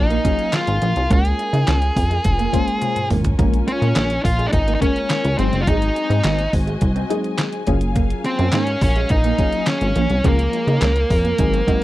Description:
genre	early-eighties boogie funk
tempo	105 BPM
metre	4/4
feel	straight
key	unclear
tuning	A4 = 439 Hz
part	octave-fuzz lead guitar	melody	0.0-11.8 s	Bb3 to Ab4	-21 LUFS	equal	distortion, slapback echo
part	warm studio string section	sustained chords	0.0-11.8 s	Gb3 to Ab5	-32 LUFS	left 2 dB	none
part	plucky analog bass	bass	0.0-11.6 s	F1 to Db3	-19 LUFS	equal	none
part	electric guitar through a small old amp	riff	0.1-11.8 s	Ab3 to Eb4	-28 LUFS	right 5 dB	lush chorus
part	detuned 8-bit digital drum machine	drums	0.1-11.8 s	handclaps, hi-hat, kick drum, snare drum, toms	-21 LUFS	equal	none
part	FM electric piano with auto-pan	accompaniment	0.2-11.8 s	F3 to C5	-24 LUFS	left 3 dB	phaser
room	little or no reverb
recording	dry, close 1970s-style studio recording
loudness	-16 LUFS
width	side -16 dB against mid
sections	0.0-11.8 A section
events	drum fill 2.8-3.4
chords	0.0 Gbmaj9; 1.1 Db6; 3.4 Bbm7; 5.4 Ab7; 7.7 Gbmaj9; 10.2 Db6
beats	0.53 | 1.10 1.67 2.24 2.81 | 3.39 3.96 4.53 5.10 | 5.67 6.24 6.82 7.39 | 7.96 8.53 9.10 9.67 | 10.24 10.81 11.39

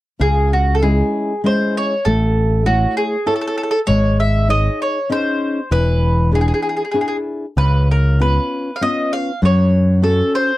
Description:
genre	italian folk, Italian serenade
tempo	98 BPM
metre	3/4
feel	rubato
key	unclear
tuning	A4 = 439 Hz
part	mandolin	melody	0.2-10.6 s	F#4 to E#5	-19 LUFS	right 1 dB	none
part	nylon-string guitar	accompaniment	0.2-10.5 s	C#3 to C#5	-20 LUFS	left 1 dB	none
part	modern bright picked electric bass	bass	0.2-10.2 s	E1 to F#2	-15 LUFS	equal	none
room	little or no reverb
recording	dry, close 1970s-style studio recording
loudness	-14 LUFS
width	side -17 dB against mid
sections	0.2-10.6 A section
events	none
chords	0.2 C#m; 2.1 A; 3.9 G#sus4; 5.7 E7; 7.6 C#7; 9.4 F#m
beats	| 0.20 0.82 1.45 | 2.06 2.67 3.28 | 3.88 4.49 5.10 | 5.71 6.33 6.95 | 7.58 8.20 8.82 | 9.43 10.03

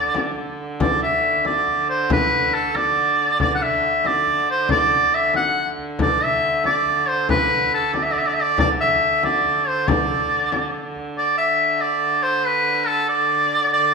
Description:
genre	medieval dance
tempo	93 BPM (dotted quarters)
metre	6/8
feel	straight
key	unclear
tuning	A4 = 439 Hz
part	clear shawm	melody	0.0-13.9 s	A4 to F#5	-18 LUFS	equal	none
part	rich hurdy-gurdy	drone	0.0-13.9 s	D3	-29 LUFS	right 1 dB	none
part	frame drum	percussion	0.1-11.1 s	none	-25 LUFS	left 3 dB	none
room	wet recital hall reverb, RT60 1.5 s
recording	minimal, uncompressed stereo recording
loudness	-17 LUFS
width	side -4 dB against mid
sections	0.8-11.2 A section; 11.2-13.9 A section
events	none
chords	none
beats	0.15 | 0.80 1.45 | 2.10 2.75 | 3.40 4.05 | 4.70 5.35 | 6.00 6.65 | 7.29 7.94 | 8.59 9.24 | 9.88 10.53 | 11.18 11.82 | 12.47 13.11 | 13.76

